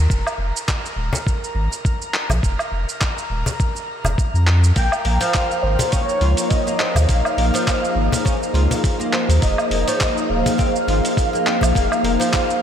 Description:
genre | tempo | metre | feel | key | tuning
organic downtempo | 103 BPM | 4/4 | swing 56% on 16ths | unclear | A4 = 439 Hz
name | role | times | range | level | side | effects
warm sub bass | bass | 0.0-12.2 s | Eb1 to F2 | -18 LUFS | equal | sidechain pumping
drifting glass-harmonics texture | texture | 0.0-12.6 s | Bb4 to Bb5 | -30 LUFS | equal | chorus, built-in reverb
dusty soul sampler-style drum kit | drums | 0.1-12.6 s | cabasa, handclaps, hi-hat, woodblock | -25 LUFS | right 1 dB | none
electronic kick drum | drums | 0.1-12.5 s | none | -20 LUFS | equal | none
cajon | percussion | 1.1-12.6 s | none | -28 LUFS | left 2 dB | none
breathy flute-like synth lead | melody | 4.8-12.6 s | C5 to G5 | -23 LUFS | equal | tremolo, ensemble chorus, diffuse ambient delay
ethereal airy pad | sustained chords | 5.5-12.6 s | F3 to Ab4 | -24 LUFS | left 2 dB | ensemble chorus, built-in reverb, sidechain pumping
oud | arpeggios | 4.8-12.5 s | F3 to F4 | -26 LUFS | right 2 dB | analog delay
room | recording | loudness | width
moderate huge ambient reverb, RT60 8.2 s | dreamy mix soaked in reverb, faint mains hum | -16 LUFS | side -8 dB against mid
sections
0.0-12.6 A section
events
none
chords
0.1 N.C.; 4.8 Bb7(no3); 9.4 Fm7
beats
| 0.10 0.68 1.27 1.85 | 2.43 3.01 3.60 4.18 | 4.76 5.34 5.93 6.51 | 7.09 7.67 8.26 8.84 | 9.42 10.00 10.59 11.17 | 11.75 12.33

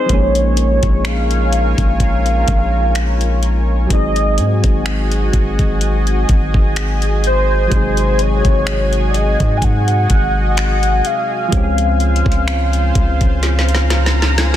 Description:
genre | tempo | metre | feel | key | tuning
contemporary R&B | 63 BPM | 4/4 | swing 54% on 16ths | Bb minor | A4 = 436 Hz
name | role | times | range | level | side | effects
warm velvety synth lead | melody | 0.0-14.4 s | C5 to Ab5 | -20 LUFS | equal | chorus, phaser, ping-pong delay
soft electric-piano-like synth keys | accompaniment | 0.0-14.6 s | C3 to Ab5 | -22 LUFS | left 2 dB | chorus
lush unison pad | sustained chords | 0.7-14.6 s | F4 to Bb5 | -24 LUFS | right 1 dB | chorus, sidechain pumping
long sustained 808-style bass | bass | 0.1-14.6 s | Ab1 to Ab2 | -16 LUFS | equal | none
smooth R&B drum kit | drums | 0.1-14.6 s | finger snaps, hi-hat, kick drum, snare drum | -18 LUFS | equal | soft clipping on snare
room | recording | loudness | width
little or no reverb | dense, heavily limited modern master | -13 LUFS | side -12 dB against mid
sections
0.1-14.6 A section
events
drum fill 13.4-14.6; synth keys fill 13.9-14.6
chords
0.1 Bbm7; 3.9 Ab7; 11.5 Dbmaj7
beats
| 0.10 1.05 2.00 2.95 | 3.90 4.86 5.81 6.76 | 7.71 8.67 9.62 10.57 | 11.52 12.48 13.43 14.38

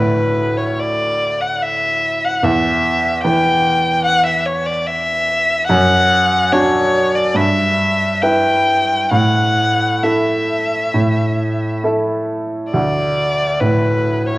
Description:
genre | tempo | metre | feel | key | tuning
classical, romantic duo for violin and grand piano | 65-75 BPM | 4/4 | rubato | D major | A4 = 440 Hz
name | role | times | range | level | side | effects
rich violin | melody | 0.0-14.4 s | B4 to G5 | -16 LUFS | left 1 dB | none
bright baby grand piano | accompaniment | 0.0-14.4 s | D2 to B4 | -17 LUFS | right 1 dB | none
room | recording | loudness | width
wet recital hall reverb, RT60 1.7 s | worn, warbling old tape, cassette tape, warbly pitch drift | -14 LUFS | side -18 dB against mid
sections
0.0-14.4 A section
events
none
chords
0.0 D5; 2.4 N.C.; 5.7 D/F#; 7.4 Em/G; 9.1 A5; 12.7 D5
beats
0.79 1.62 | 2.43 3.24 4.05 4.87 | 5.70 6.52 7.35 8.22 | 9.12 10.03 10.94 11.84 | 12.73 13.61

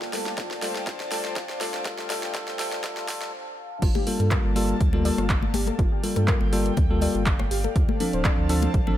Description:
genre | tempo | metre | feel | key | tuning
deep house | 122 BPM | 4/4 | swing 53% on 16ths | G minor | A4 = 445 Hz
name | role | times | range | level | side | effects
airy breathy pad | sustained chords | 0.0-9.0 s | Bb3 to A5 | -34 LUFS | left 1 dB | chorus, sidechain pumping
deep house drum kit | drums | 0.0-8.8 s | crash cymbal, handclaps, hi-hat, rim click, snare drum | -31 LUFS | right 1 dB | overdrive, high-pass filter on snare, studio reverb, high-pass filter on hats, high-pass filter on cymbals
deep dark ambient pad | texture | 0.0-3.3 s | D4 to A5 | -37 LUFS | equal | chorus, built-in reverb, sidechain pumping
bell-like tine electric piano | stabs | 0.1-9.0 s | F3 to A4 | -29 LUFS | left 1 dB | sidechain pumping, tape echo
warbly dusty pluck | arpeggios | 0.4-8.3 s | F4 to D5 | -35 LUFS | left 3 dB | chorus, sidechain pumping, tape echo
electronic kick drum | drums | 0.4-8.8 s | none | -24 LUFS | equal | overdrive, studio reverb
warm sub bass | bass | 3.8-9.0 s | D1 to G2 | -26 LUFS | equal | sidechain pumping
congas | percussion | 4.0-9.0 s | none | -32 LUFS | left 6 dB | none
room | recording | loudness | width
little or no reverb | high-pass filter | -22 LUFS | side -12 dB against mid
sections
0.0-3.8 A section; 3.8-9.0 B section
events
build-up 0.0-3.8; drum fill 0.0-3.3; stop 3.3-3.8; drop 3.8-9.0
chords
0.0 Dm7; 3.8 Gm9; 7.8 Dm7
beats
0.38 0.87 1.36 | 1.85 2.35 2.84 3.33 | 3.82 4.31 4.81 5.30 | 5.79 6.28 6.77 7.26 | 7.76 8.25 8.74

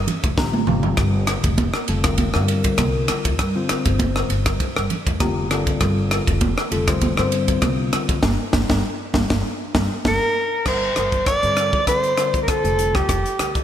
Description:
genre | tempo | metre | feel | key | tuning
electric jazz fusion | 99 BPM | 4/4 | swing 54% on 16ths | G minor | A4 = 436 Hz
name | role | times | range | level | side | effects
upright bass | bass | 0.0-13.6 s | F1 to G2 | -24 LUFS | equal | none
crisp fusion drum kit | drums | 0.1-13.6 s | crash cymbal, hi-hat, kick drum, ride cymbal, rim click, snare drum, toms | -22 LUFS | equal | none
congas | percussion | 0.1-10.2 s | none | -27 LUFS | right 4 dB | none
mellow tine electric piano | accompaniment | 0.4-13.2 s | D3 to Bb5 | -25 LUFS | left 4 dB | phaser
breathy soprano saxophone | melody | 10.1-13.6 s | G4 to D5 | -19 LUFS | right 1 dB | none
room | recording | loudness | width
light reverb | bright 1980s-style digital production | -17 LUFS | side -10 dB against mid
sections
0.0-10.7 A section; 10.7-13.6 B section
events
tine electric piano fill 0.1-1.0, 4.9-5.8; drum fill 0.4-1.0, 8.2-10.7; band accent 8.2-10.7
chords
0.0 Gm11; 10.7 G9sus4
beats
0.38 | 0.98 1.58 2.19 2.79 | 3.40 4.00 4.60 5.21 | 5.81 6.42 7.02 7.63 | 8.23 8.84 9.44 10.05 | 10.66 11.26 11.87 12.48 | 13.09

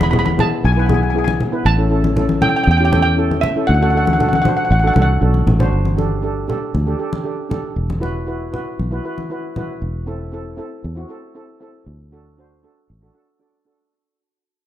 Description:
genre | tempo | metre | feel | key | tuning
calypso | 118 BPM | 4/4 | straight | G major | A4 = 440 Hz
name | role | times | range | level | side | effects
steel pan | melody | 0.0-5.1 s | E5 to B5 | -20 LUFS | right 1 dB | none
steel pan | accompaniment | 0.0-13.9 s | B3 to F#5 | -22 LUFS | equal | none
fingered electric bass | bass | 0.0-13.1 s | E1 to E2 | -17 LUFS | equal | none
congas | percussion | 0.0-9.7 s | none | -22 LUFS | left 2 dB | none
room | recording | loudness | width
light reverb, studio reverb | dark, warm production | -15 LUFS | side -12 dB against mid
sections
0.0-5.7 A section; 5.7-13.9 B section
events
drum fill 5.3-5.7; fade-out 5.7-13.9; steel pan fill 12.9-13.9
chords
0.0 E; 1.7 A7; 3.7 D7; 5.7 Gsus2; 7.8 Esus2; 9.8 Am/E; 11.9 D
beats
0.13 0.64 1.15 | 1.66 2.17 2.67 3.18 | 3.69 4.20 4.71 5.22 | 5.72 6.24 6.75 7.26 | 7.77 8.28 8.79 9.30 | 9.82 10.33 10.84 11.36 | 11.87 12.38 12.90 13.41

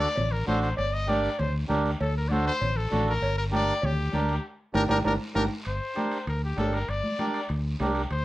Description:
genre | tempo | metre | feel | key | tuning
latin, cumbia | 197 BPM | 4/4 | straight | G harmonic minor | A4 = 440 Hz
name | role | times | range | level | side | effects
brilliant trumpet | second line | 0.0-8.2 s | G4 to Eb5 | -30 LUFS | left 2 dB | none
accordion | accompaniment | 0.0-8.0 s | D4 to Bb4 | -28 LUFS | right 2 dB | none
fingered electric bass | bass | 0.0-8.2 s | G1 to D2 | -28 LUFS | equal | none
guiro | percussion | 0.0-8.2 s | none | -43 LUFS | equal | none
congas | percussion | 0.2-8.0 s | none | -33 LUFS | left 1 dB | none
cowbell and timbales | percussion | 0.2-8.2 s | none | -36 LUFS | right 2 dB | none
room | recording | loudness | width
moderate studio reverb, RT60 0.5 s | worn, warbling old tape, cassette tape, warbly pitch drift | -24 LUFS | side -16 dB against mid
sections
0.0-5.7 A section; 5.7-8.2 B section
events
trumpet solo 0.0-5.7, 5.7-8.2; band accent 4.4-5.7; drum fill 5.1-5.7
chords
0.0 D; 0.8 Gm; 2.0 D7; 3.2 Gm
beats
0.17 0.48 | 0.78 1.09 1.39 1.70 | 2.00 2.31 2.61 2.92 | 3.22 3.53 3.83 4.14 | 4.44 4.75 5.05 5.36 | 5.66 5.97 6.28 6.58 | 6.89 7.19 7.50 7.81 | 8.11

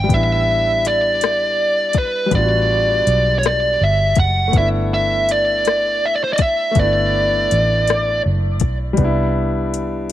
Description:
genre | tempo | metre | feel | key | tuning
slow six-eight R&B | 54 BPM (dotted quarters) | 6/8 | straight | unclear | A4 = 442 Hz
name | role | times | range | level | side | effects
fuzz lead guitar | melody | 0.0-8.2 s | B4 to G5 | -17 LUFS | equal | distortion
clear concert grand piano | accompaniment | 0.0-10.1 s | G3 to F#4 | -24 LUFS | left 2 dB | none
vintage muted fingered electric bass | bass | 0.0-10.1 s | F#1 to C2 | -20 LUFS | right 1 dB | none
smooth R&B drum kit | drums | 0.1-10.1 s | hi-hat, kick drum, rim click | -19 LUFS | left 4 dB | overdrive
room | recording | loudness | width
little or no reverb | 1960s-style stereo | -14 LUFS | side -13 dB against mid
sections
0.1-10.1 A section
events
none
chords
0.1 A9sus4; 4.5 G69; 9.0 Cmaj7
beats
| 0.09 1.20 | 2.31 3.42 | 4.53 5.64 | 6.76 7.87 | 8.98 10.09

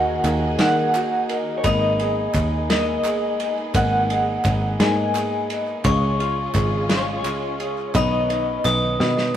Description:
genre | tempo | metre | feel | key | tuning
indie folk with a building arrangement | 57 BPM (dotted quarters) | 6/8 | straight | unclear | A4 = 440 Hz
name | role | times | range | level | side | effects
electric guitar through a small old amp | melody | 0.0-9.3 s | C#5 to G#5 | -24 LUFS | equal | tremolo
glockenspiel with brass mallets | second line | 0.0-9.4 s | B5 to D#6 | -28 LUFS | left 4 dB | none
picked twelve-string acoustic guitar | accompaniment | 0.0-9.4 s | G#2 to B4 | -30 LUFS | left 4 dB | none
warm symphonic string section | sustained chords | 0.0-9.4 s | C#3 to G#4 | -32 LUFS | right 3 dB | none
warm upright piano | arpeggios | 0.0-9.4 s | G#3 to B4 | -27 LUFS | right 1 dB | none
picked electric bass | bass | 0.0-9.4 s | G#1 to D#3 | -24 LUFS | equal | none
loose indie drum kit | drums | 0.2-9.3 s | kick drum, ride cymbal, snare drum | -27 LUFS | equal | none
group handclap | percussion | 0.2-8.8 s | none | -35 LUFS | right 2 dB | none
room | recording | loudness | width
moderate stone room reverb, RT60 1.2 s | rough rehearsal-room recording | -18 LUFS | side -10 dB against mid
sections
0.0-9.4 A section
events
drum fill 9.0-9.4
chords
0.0 D#m; 1.6 G#madd9; 5.8 C#; 8.0 Badd9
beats
0.59 | 1.65 2.69 | 3.75 4.80 | 5.85 6.90 | 7.95 9.01

